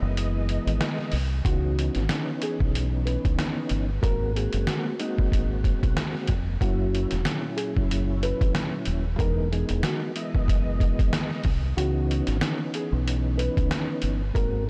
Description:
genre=hip hop, boom-bap hip-hop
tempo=93 BPM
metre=4/4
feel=swing 57% on 16ths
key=C# dorian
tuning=A4 = 440 Hz
part: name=nylon-string guitar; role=melody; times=0.0-14.6 s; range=D#4 to B4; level=-37 LUFS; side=equal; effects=high-pass filter, low-pass filter, tape echo
part: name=mellow tonewheel organ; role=accompaniment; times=0.0-14.7 s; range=A#2 to D#5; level=-33 LUFS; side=equal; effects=chorus vibrato, slow rotary speaker, cassette tape, high-pass filter, low-pass filter
part: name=deep dub fingered electric bass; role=bass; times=0.0-14.7 s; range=D#1 to C#2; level=-29 LUFS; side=equal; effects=none
part: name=trip hop sampler-style drum kit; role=drums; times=0.2-14.5 s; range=hi-hat, kick drum, rim click, snare drum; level=-29 LUFS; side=equal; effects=vintage 12-bit sampler grit
room=light reverb, digital ambience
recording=none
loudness=-26 LUFS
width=mono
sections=0.0-14.7 A section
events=break 0.0-1.4; kick muted 11.8-13.1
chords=0.0 Emaj7; 1.4 C#m9; 4.0 G#9; 6.6 F#7; 9.2 Emaj7; 11.8 C#m9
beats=0.16 0.80 | 1.45 2.09 2.74 3.38 | 4.03 4.67 5.32 5.96 | 6.61 7.25 7.90 8.54 | 9.19 9.83 10.48 11.12 | 11.77 12.41 13.06 13.71 | 14.35

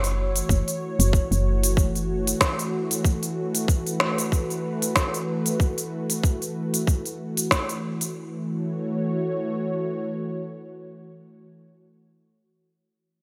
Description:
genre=organic downtempo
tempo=94 BPM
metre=4/4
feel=swing 57% on 16ths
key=F# minor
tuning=A4 = 440 Hz
part: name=warm analog pad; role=sustained chords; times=0.0-11.5 s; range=E3 to C#5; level=-30 LUFS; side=equal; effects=chorus, sidechain pumping
part: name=santur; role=arpeggios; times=0.0-0.7 s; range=E4 to F#4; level=-50 LUFS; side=equal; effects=none
part: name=woody FM bass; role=bass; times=0.0-2.3 s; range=F#1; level=-26 LUFS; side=equal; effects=sidechain pumping
part: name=organic electronic drum kit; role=drums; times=0.0-8.1 s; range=hi-hat, shaker, snare drum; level=-28 LUFS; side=equal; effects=overdrive, gated reverb
part: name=electronic kick drum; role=drums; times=0.5-7.7 s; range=none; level=-24 LUFS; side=equal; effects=overdrive
room=moderate plate reverb, RT60 2.8 s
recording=bright 1980s-style digital production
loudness=-25 LUFS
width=mono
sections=0.0-8.2 A section; 8.2-10.7 B section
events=none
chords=0.0 F#m7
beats=| 0.49 1.13 1.77 2.40 | 3.04 3.68 4.32 4.96 | 5.60 6.24 6.87 7.51 | 8.15 8.79 9.43 10.06

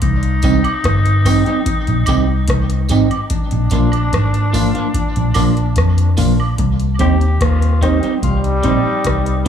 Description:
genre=dub reggae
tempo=73 BPM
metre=4/4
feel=straight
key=C minor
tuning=A4 = 441 Hz
part: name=raspy tenor saxophone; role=second line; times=0.0-9.4 s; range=D4 to G4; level=-24 LUFS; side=left 4 dB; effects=tape echo
part: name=vintage muted fingered electric bass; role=bass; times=0.0-9.5 s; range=G1 to F2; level=-15 LUFS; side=equal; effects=none
part: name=booming analog drum machine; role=drums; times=0.0-9.5 s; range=hi-hat, kick drum, rim click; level=-19 LUFS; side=left 1 dB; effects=none
part: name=electric guitar at the edge of break-up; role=accompaniment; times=0.4-9.5 s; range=F3 to G4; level=-20 LUFS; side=right 5 dB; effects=harmonic tremolo, tape echo
part: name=tambourine and woodblock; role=percussion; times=0.4-6.6 s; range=none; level=-28 LUFS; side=right 4 dB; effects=tape echo
part: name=clear upright piano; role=stabs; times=7.0-9.5 s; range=C4 to C5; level=-28 LUFS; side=left 4 dB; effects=tape echo
part: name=bright trombone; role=melody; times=8.2-9.5 s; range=G3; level=-19 LUFS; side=left 1 dB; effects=tape echo
room=light reverb, studio reverb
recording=small room ambience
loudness=-13 LUFS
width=side -8 dB against mid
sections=0.0-6.6 A section; 6.6-9.5 B section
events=break 0.0-6.6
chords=0.0 Cm; 3.3 Bb; 6.6 Cm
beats=| 0.02 0.84 1.66 2.48 | 3.30 4.12 4.94 5.76 | 6.58 7.40 8.22 9.04

